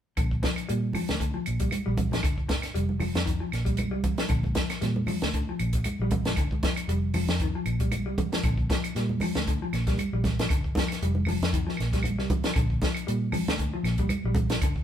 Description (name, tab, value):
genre	afrobeat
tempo	116 BPM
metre	4/4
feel	swing 55% on 16ths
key	Bb major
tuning	A4 = 440 Hz
part	mellow electric guitar	arpeggios	0.2-14.8 s	D3 to G3	-32 LUFS	left 1 dB	none
part	vintage muted fingered electric bass	bass	0.2-14.8 s	F1 to Bb2	-29 LUFS	equal	none
part	compact cocktail drum kit	drums	0.2-14.8 s	hi-hat, kick drum, snare drum	-28 LUFS	equal	none
part	claves	percussion	0.2-14.8 s	none	-38 LUFS	right 3 dB	none
part	congas	percussion	0.4-14.5 s	none	-33 LUFS	right 1 dB	none
room	moderate studio reverb, RT60 0.9 s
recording	band playing live in one room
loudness	-25 LUFS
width	side -10 dB against mid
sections	0.2-14.8 A section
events	none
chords	0.2 Bb6; 2.2 F5; 4.3 Bb6; 6.4 F5; 8.4 Bb6; 10.5 F5; 12.6 Bb6